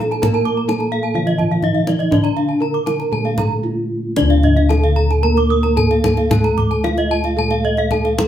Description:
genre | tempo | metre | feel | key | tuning
Balinese gamelan | 112-132 BPM | 4/4 | straight | D pelog | A4 = 440 Hz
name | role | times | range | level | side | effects
gamelan-type bronze metallophone | melody | 0.0-8.3 s | D4 to Bb4-20c | -19 LUFS | equal | none
gamelan-type bronze metallophone | accompaniment | 0.0-8.3 s | D3 to D4 | -23 LUFS | right 1 dB | none
gamelan-type bronze metallophone | arpeggios | 0.0-8.3 s | D5 to Bb5-20c | -25 LUFS | left 5 dB | none
gamelan-type bossed gongs | bass | 0.0-8.3 s | D2 to Bb4-20c | -20 LUFS | equal | none
kendang | percussion | 0.0-8.3 s | none | -22 LUFS | left 1 dB | none
gamelan-type bronze metallophone | arpeggios | 0.1-8.2 s | Eb5+20c to Eb6+20c | -25 LUFS | right 4 dB | none
room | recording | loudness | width
wet large studio reverb, RT60 0.9 s | band playing live in one room | -14 LUFS | side -10 dB against mid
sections
0.0-4.2 A section; 4.2-8.3 B section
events
drum fill 3.8-4.2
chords
none

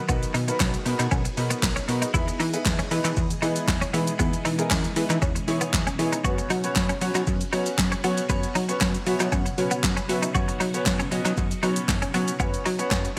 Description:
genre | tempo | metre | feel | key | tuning
dance-pop | 117 BPM | 4/4 | straight | unclear | A4 = 440 Hz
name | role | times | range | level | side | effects
phased string machine | sustained chords | 0.0-13.2 s | B2 to D#5 | -38 LUFS | equal | ensemble chorus, phaser, sidechain pumping
warm baby grand piano | accompaniment | 0.1-13.2 s | B3 to F#5 | -32 LUFS | equal | lush chorus, sidechain pumping
twelve-string electric guitar | riff | 0.1-13.2 s | B3 to F#4 | -33 LUFS | equal | analog chorus
plucky analog bass | bass | 0.1-13.1 s | B1 to F#3 | -29 LUFS | equal | sidechain pumping
deep house drum kit | drums | 0.1-13.2 s | handclaps, hi-hat, kick drum, shaker, snare drum | -29 LUFS | equal | overdrive, gated reverb
room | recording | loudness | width
light reverb, digital ambience | bright 1980s-style digital production | -24 LUFS | mono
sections
0.0-13.2 A section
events
grand piano fill 8.8-10.3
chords
0.0 Bmaj7; 2.1 Emaj7; 6.2 F#sus4

